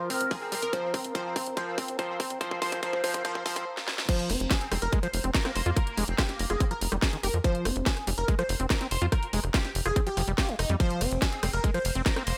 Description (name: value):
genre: psychedelic trance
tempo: 143 BPM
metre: 4/4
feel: straight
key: F minor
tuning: A4 = 441 Hz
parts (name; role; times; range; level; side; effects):
- supersaw stab; melody; 0.0-12.4 s; Eb4 to C5; -36 LUFS; equal; phaser, cassette tape, sidechain pumping, dub echo
- overtone-sweeping drone; sustained chords; 0.0-4.1 s; F3 to Bb4; -40 LUFS; equal; chorus, built-in reverb, phaser, sidechain pumping
- overdriven acid bass; riff; 0.0-12.2 s; Eb3 to G4; -36 LUFS; equal; sidechain pumping, dub echo
- tight sequencer bass; bass; 0.1-12.3 s; F1 to F2; -32 LUFS; equal; none
- garage drum kit; drums; 0.1-12.4 s; crash cymbal, hi-hat, ride cymbal, rim click, snare drum; -34 LUFS; equal; small room reverb
- electronic kick drum; drums; 0.3-12.1 s; none; -30 LUFS; equal; small room reverb
- metallic wobble bass; second line; 0.4-6.7, 11.3-12.4 s; Bb3 to C4; -43 LUFS; equal; distortion, ensemble chorus, sidechain pumping, high-pass filter, dub echo
room: light reverb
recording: high-pass filter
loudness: -28 LUFS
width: mono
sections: 0.0-4.1 A section; 4.1-12.4 B section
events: build-up 0.0-4.1; drum fill 0.0-3.7, 3.8-4.1; filter sweep on acid bass 0.0-4.1; filter sweep 0.0-4.1; drop 4.1-12.4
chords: 0.0 F5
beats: 0.31 | 0.73 1.15 1.57 1.99 | 2.41 2.83 3.25 3.67 | 4.09 4.51 4.93 5.35 | 5.76 6.18 6.60 7.02 | 7.44 7.86 8.28 8.70 | 9.12 9.54 9.96 10.38 | 10.80 11.22 11.64 12.06